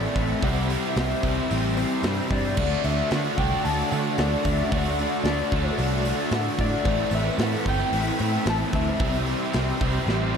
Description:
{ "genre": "rock, shoegaze and dream pop", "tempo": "112 BPM", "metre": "4/4", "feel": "straight", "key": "D mixolydian", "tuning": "A4 = 436 Hz", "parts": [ { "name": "electric guitar through a small old amp", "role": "melody", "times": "0.0-10.4 s", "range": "D5 to A5", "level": "-30 LUFS", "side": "left 2 dB", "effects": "analog chorus, analog delay" }, { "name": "soft string machine", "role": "sustained chords", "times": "0.0-10.4 s", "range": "C4 to C6", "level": "-33 LUFS", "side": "left 1 dB", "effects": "ensemble chorus" }, { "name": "picked twelve-string acoustic guitar", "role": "arpeggios", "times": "0.0-10.4 s", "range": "F#3 to B4", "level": "-36 LUFS", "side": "left 8 dB", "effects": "analog chorus, analog delay" }, { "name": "overdriven electric guitar", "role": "riff", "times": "0.0-10.4 s", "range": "A2 to F#4", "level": "-30 LUFS", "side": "right 8 dB", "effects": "reverse reverb" }, { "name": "overdriven electric guitar", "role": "riff", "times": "0.0-10.4 s", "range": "A2 to D4", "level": "-31 LUFS", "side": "equal", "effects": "none" }, { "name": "thick fuzz guitar", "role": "riff", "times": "0.0-10.4 s", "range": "A2 to D4", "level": "-32 LUFS", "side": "left 9 dB", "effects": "distortion, lush chorus" }, { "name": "vintage muted picked electric bass", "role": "bass", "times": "0.0-10.4 s", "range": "G1 to D3", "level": "-27 LUFS", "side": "equal", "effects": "none" }, { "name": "big rock drum kit", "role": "drums", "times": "0.2-10.2 s", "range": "crash cymbal, hi-hat, kick drum, snare drum", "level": "-30 LUFS", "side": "equal", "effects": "none" } ], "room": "moderate plate reverb, RT60 1.4 s, small room ambience", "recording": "dreamy mix soaked in reverb", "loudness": "-22 LUFS", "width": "side -7 dB against mid", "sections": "0.0-10.4 A section", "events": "drum fill 10.1", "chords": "0.4 C; 2.6 Dadd9; 6.9 Amadd9; 9.0 C", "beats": "| 0.42 0.96 1.50 2.03 | 2.57 3.11 3.64 4.18 | 4.72 5.25 5.79 6.33 | 6.86 7.40 7.94 8.47 | 9.01 9.55 10.09" }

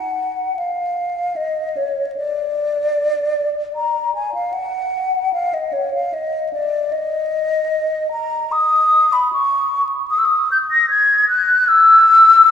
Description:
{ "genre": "classical, baroque-style fantasia for unaccompanied flute", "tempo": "76 BPM", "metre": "3/4", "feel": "rubato", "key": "Eb minor", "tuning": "A4 = 440 Hz", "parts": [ { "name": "mellow hollow concert flute", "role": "solo", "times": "0.0-12.5 s", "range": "Db5 to A#6", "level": "-14 LUFS", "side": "left 2 dB", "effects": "none" } ], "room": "wet church reverb, RT60 3.1 s", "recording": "recorded in a church or concert hall, vinyl crackle, small room ambience", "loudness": "-14 LUFS", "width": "side -8 dB against mid", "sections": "0.0-12.5 A section", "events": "none", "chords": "none", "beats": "0.55 1.36 | 2.17 2.96 3.76 | 4.55 5.35 6.15 | 6.94 7.72 8.53 | 9.32 10.10 10.89 | 11.69 12.48" }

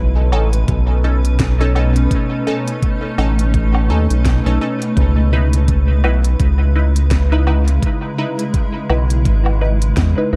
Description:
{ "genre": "ambient dub", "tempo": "84 BPM", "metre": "4/4", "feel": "swing 58% on 16ths", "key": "B mixolydian", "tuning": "A4 = 440 Hz", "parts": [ { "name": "granular cloud pad", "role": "sustained chords", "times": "0.0-10.4 s", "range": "B2 to B4", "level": "-25 LUFS", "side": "equal", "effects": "built-in reverb" }, { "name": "round analog bass", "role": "bass", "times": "0.0-10.4 s", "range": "G#1 to E2", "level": "-16 LUFS", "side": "equal", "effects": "none" }, { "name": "filtered dub chord stab", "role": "stabs", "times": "0.3-10.4 s", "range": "C#4 to B4", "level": "-26 LUFS", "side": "equal", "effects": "phaser, analog chorus, dub echo" }, { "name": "organic electronic drum kit", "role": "drums", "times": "0.3-10.1 s", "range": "hi-hat, snare drum, woodblock", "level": "-30 LUFS", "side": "equal", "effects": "dub echo" }, { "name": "electronic kick drum", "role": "drums", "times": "0.7-10.1 s", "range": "none", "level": "-21 LUFS", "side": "equal", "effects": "none" } ], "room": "little or no reverb", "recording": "dark, warm production", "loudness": "-16 LUFS", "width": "mono", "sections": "0.0-10.4 A section", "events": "none", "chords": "0.0 B7; 5.0 C#m9", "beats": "0.68 1.40 | 2.11 2.83 3.54 4.25 | 4.97 5.68 6.40 7.11 | 7.83 8.54 9.25 9.97" }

